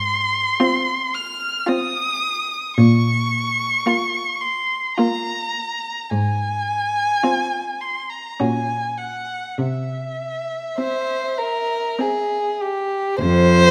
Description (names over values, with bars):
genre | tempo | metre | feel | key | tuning
classical, slow romantic movement for string quartet | 49-56 BPM | 3/4 | rubato | F minor | A4 = 439 Hz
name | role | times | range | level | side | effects
rich violin | melody | 0.0-12.6 s | E5 to F6 | -25 LUFS | equal | none
rich cello | bass | 0.0-13.7 s | F2 to C3 | -20 LUFS | equal | none
warm violin | second line | 0.6-13.7 s | F4 to C5 | -23 LUFS | equal | none
rich viola | accompaniment | 0.6-12.9 s | Bb3 to Db4 | -26 LUFS | equal | none
room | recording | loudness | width
moderate recital hall reverb, RT60 1.6 s | none | -21 LUFS | mono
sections
0.0-13.2 A section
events
none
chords
0.0 Fm/Ab; 2.8 Bbm; 6.1 Fm/Ab; 8.4 Gb/Bb; 9.6 C; 13.2 F5